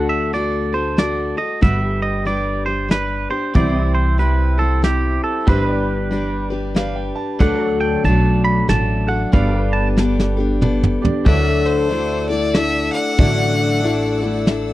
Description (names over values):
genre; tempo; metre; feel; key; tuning
honky-tonk and classic country; 93 BPM; 3/4; swing 62% on 8ths; unclear; A4 = 438 Hz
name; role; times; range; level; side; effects
twangy electric guitar; second line; 0.0-9.9 s; G4 to B5; -22 LUFS; right 3 dB; warbly pitch drift, tape echo
picked steel-string acoustic guitar; accompaniment; 0.0-14.7 s; C3 to C5; -21 LUFS; left 4 dB; none
pedal steel guitar; sustained chords; 0.0-14.7 s; F#3 to F#5; -30 LUFS; right 1 dB; lush chorus
upright bass; bass; 0.0-14.7 s; G1 to D2; -20 LUFS; equal; none
soft brush drum kit; drums; 0.3-14.7 s; hi-hat, kick drum, snare drum, toms; -15 LUFS; equal; none
bright grand piano; accompaniment; 3.6-14.7 s; F#3 to A5; -27 LUFS; right 5 dB; none
clear fiddle; melody; 11.3-14.4 s; C5 to F#5; -22 LUFS; left 1 dB; none
clear studio violin section; sustained chords; 11.3-14.7 s; D5 to E6; -31 LUFS; left 1 dB; none
room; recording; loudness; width
little or no reverb; dry, close 1970s-style studio recording; -15 LUFS; side -16 dB against mid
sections
0.0-11.3 A section; 11.3-14.7 B section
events
clean electric guitar solo 0.0-11.3; grand piano fill 6.4-7.4; drum fill 10.0-11.3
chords
0.0 D; 1.6 G; 3.6 C; 5.5 G; 7.4 D; 9.3 Gadd9; 11.3 Dadd9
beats
0.34 0.98 | 1.63 2.27 2.91 | 3.55 4.20 4.84 | 5.48 6.12 6.77 | 7.41 8.05 8.69 | 9.34 9.98 10.62 | 11.26 11.90 12.55 | 13.19 13.83 14.47